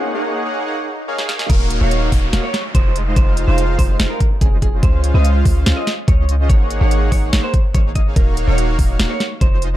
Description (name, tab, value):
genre	future bass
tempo	144 BPM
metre	4/4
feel	half-time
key	unclear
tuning	A4 = 440 Hz
part	soft supersaw	riff	0.0-9.8 s	Ab3 to Gb5	-22 LUFS	equal	sidechain pumping
part	swell and downlifter	sound effects	0.8-4.8 s	none	-31 LUFS	equal	none
part	trap drum kit	drums	1.2-9.7 s	crash cymbal, hi-hat, snare drum	-22 LUFS	equal	overdrive
part	electric guitar through a small old amp	melody	1.5-9.6 s	Ab4 to Eb5	-26 LUFS	right 2 dB	tremolo, sidechain pumping, digital delay
part	warm 808-style bass	bass	1.5-9.8 s	Eb1 to Db2	-16 LUFS	equal	sidechain pumping
part	electronic kick drum	drums	1.5-9.5 s	none	-14 LUFS	equal	overdrive
room	little or no reverb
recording	dark, warm production, high-pass filter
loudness	-14 LUFS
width	side -14 dB against mid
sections	0.0-1.5 A section; 1.5-9.8 B section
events	break 0.0-1.5; build-up 0.0-1.5; filter sweep on supersaw synth 0.0-1.5; filter sweep 0.0-1.5; swell 0.8-1.5; drum fill 1.2-1.5; drop 1.5-9.8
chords	0.0 Ab9sus4; 1.5 Ebm9; 3.0 Fm7; 6.5 Ab9sus4; 8.2 Ebm9